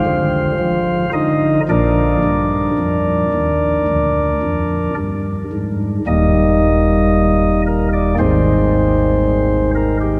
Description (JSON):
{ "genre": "classical, chorale-style piece for pipe organ", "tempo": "56 BPM", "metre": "4/4", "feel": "straight", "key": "Eb major", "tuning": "A4 = 440 Hz", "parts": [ { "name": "chamber organ, flutes", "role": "solo", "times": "0.0-10.2 s", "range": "Eb1 to F5", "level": "-16 LUFS", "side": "equal", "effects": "none" } ], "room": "wet cathedral reverb, RT60 6.3 s", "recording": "none", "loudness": "-16 LUFS", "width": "mono", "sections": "0.0-6.1 A section; 6.1-10.2 B section", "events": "none", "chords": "0.0 F5; 1.7 Bb; 6.1 Eb; 8.2 Ab", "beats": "0.59 | 1.69 2.79 3.89 4.98 | 6.07 7.13 8.18 9.22" }